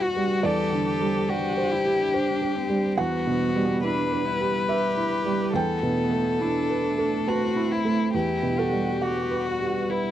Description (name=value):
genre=neoclassical piano and strings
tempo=70 BPM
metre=3/4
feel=rubato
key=E minor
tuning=A4 = 440 Hz
part: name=rich violin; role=melody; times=0.0-10.1 s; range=E4 to B4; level=-27 LUFS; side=left 5 dB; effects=none
part: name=rich cello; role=second line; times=0.0-10.1 s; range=B3 to G4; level=-31 LUFS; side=right 3 dB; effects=none
part: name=felt-muted upright piano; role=accompaniment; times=0.0-10.1 s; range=E2 to A5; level=-26 LUFS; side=right 3 dB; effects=none
part: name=warbly tape-like pad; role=sustained chords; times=0.0-10.1 s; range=G3 to F#5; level=-31 LUFS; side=left 1 dB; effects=chorus, built-in reverb
room=light reverb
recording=dry, close 1970s-style studio recording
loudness=-22 LUFS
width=side -11 dB against mid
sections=0.0-10.1 A section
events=none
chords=0.4 Csus2/E; 3.0 Emadd9; 5.5 Amadd9/E; 8.1 Emadd9